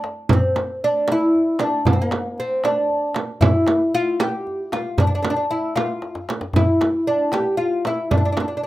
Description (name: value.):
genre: Persian modal ensemble.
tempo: 77 BPM (dotted quarters).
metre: 6/8.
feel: straight.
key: unclear.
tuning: A4 = 440 Hz.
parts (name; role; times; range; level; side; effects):
tombak; percussion; 0.0-8.7 s; none; -23 LUFS; left 1 dB; none.
oud; melody; 0.3-8.7 s; Bb3+45c to G4; -20 LUFS; equal; none.
frame drum; percussion; 0.3-8.5 s; none; -22 LUFS; right 3 dB; none.
room: light reverb.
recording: rough home demo mix.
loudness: -18 LUFS.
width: side -16 dB against mid.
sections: 0.3-8.7 A section.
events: drum fill 6.0-6.5.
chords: none.